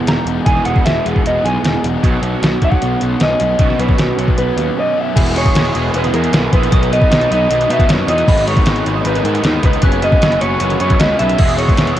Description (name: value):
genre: indie rock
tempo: 154 BPM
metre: 4/4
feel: straight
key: unclear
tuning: A4 = 440 Hz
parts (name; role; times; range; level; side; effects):
- crunchy overdriven guitar; riff; 0.0-12.0 s; E2 to B4; -21 LUFS; right 9 dB; ensemble chorus, tape echo
- overdriven electric guitar; riff; 0.0-12.0 s; F#2 to E4; -22 LUFS; left 10 dB; none
- electric guitar through a small old amp; melody; 0.1-12.0 s; A#4 to A#5; -18 LUFS; right 1 dB; cassette tape, tape echo
- fuzz picked electric bass; bass; 0.1-12.0 s; E1 to B2; -19 LUFS; equal; overdrive
- detuned 8-bit digital drum machine; drums; 0.1-12.0 s; crash cymbal, hi-hat, kick drum, snare drum; -15 LUFS; equal; cassette tape
- glockenspiel with soft plastic mallets; second line; 5.2-12.0 s; G#5 to F#6; -30 LUFS; equal; none
room: little or no reverb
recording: home recording on cassette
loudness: -12 LUFS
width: side -12 dB against mid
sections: 0.0-5.2 A section; 5.2-12.0 B section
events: clean electric guitar solo 0.0-5.2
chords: 0.0 Emaj7; 2.0 Bsus2; 5.2 E; 6.7 B; 8.3 G#m; 9.8 F#sus4; 11.4 E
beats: 0.07 | 0.46 0.85 1.25 1.64 | 2.03 2.42 2.81 3.21 | 3.60 3.99 4.38 4.77 | 5.16 5.55 5.94 6.33 | 6.72 7.11 7.50 7.89 | 8.28 8.67 9.05 9.44 | 9.83 10.22 10.61 11.00 | 11.39 11.78